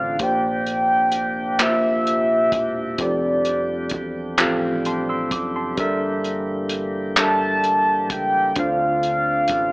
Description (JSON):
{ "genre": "slow six-eight R&B", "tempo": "43 BPM (dotted quarters)", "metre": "6/8", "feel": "straight", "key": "G dorian", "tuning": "A4 = 436 Hz", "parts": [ { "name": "mellow horn-like synth lead", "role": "melody", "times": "0.0-9.7 s", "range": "D5 to A5", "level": "-19 LUFS", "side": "equal", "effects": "chorus" }, { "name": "tine electric piano", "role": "accompaniment", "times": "0.0-9.7 s", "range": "Bb2 to E6", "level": "-23 LUFS", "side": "equal", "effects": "medium stereo tremolo" }, { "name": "bright tonewheel organ", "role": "sustained chords", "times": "0.0-9.7 s", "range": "C3 to G4", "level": "-31 LUFS", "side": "equal", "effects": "slow rotary speaker" }, { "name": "deep dub fingered electric bass", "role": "bass", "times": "0.0-9.7 s", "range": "E1 to D2", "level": "-36 LUFS", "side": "equal", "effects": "none" }, { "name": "cloth-damped thuddy drum kit", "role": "drums", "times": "0.2-9.7 s", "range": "handclaps, hi-hat, kick drum", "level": "-22 LUFS", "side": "equal", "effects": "none" } ], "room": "light reverb, studio reverb", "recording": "AM radio sound", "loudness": "-18 LUFS", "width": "side -26 dB against mid", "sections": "0.0-9.7 A section", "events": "none", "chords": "0.2 Bb69; 3.0 F69; 5.8 Gm69; 8.6 Dm7", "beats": "| 0.20 1.59 | 2.99 4.38 | 5.78 7.17 | 8.57" }